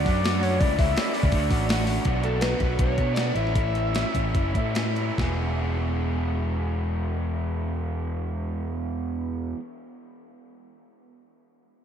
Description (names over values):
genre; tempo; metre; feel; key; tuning
indie rock; 138-166 BPM; 4/4; straight; E mixolydian; A4 = 440 Hz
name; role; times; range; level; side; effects
overdriven synth lead; melody; 0.0-4.8 s; A4 to E5; -30 LUFS; left 1 dB; phaser, ping-pong delay
raw garage guitar; riff; 0.0-9.6 s; E2 to G#4; -29 LUFS; right 2 dB; overdrive
picked electric bass; bass; 0.0-9.5 s; E1 to B2; -27 LUFS; equal; none
gated 80s digital drum machine; drums; 0.1-5.3 s; hi-hat, kick drum, snare drum; -27 LUFS; equal; gated reverb, gated reverb snare, overdrive
room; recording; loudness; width
moderate huge ambient reverb, RT60 7.0 s; dreamy mix soaked in reverb; -23 LUFS; side -8 dB against mid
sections
0.0-2.0 A section; 2.0-5.2 B section; 5.2-8.7 C section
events
kick and snare drop out 1.9; slowing down 2.0-5.2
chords
0.0 D; 0.6 A/C#; 1.3 D; 2.0 Bmadd9; 3.3 A; 5.2 E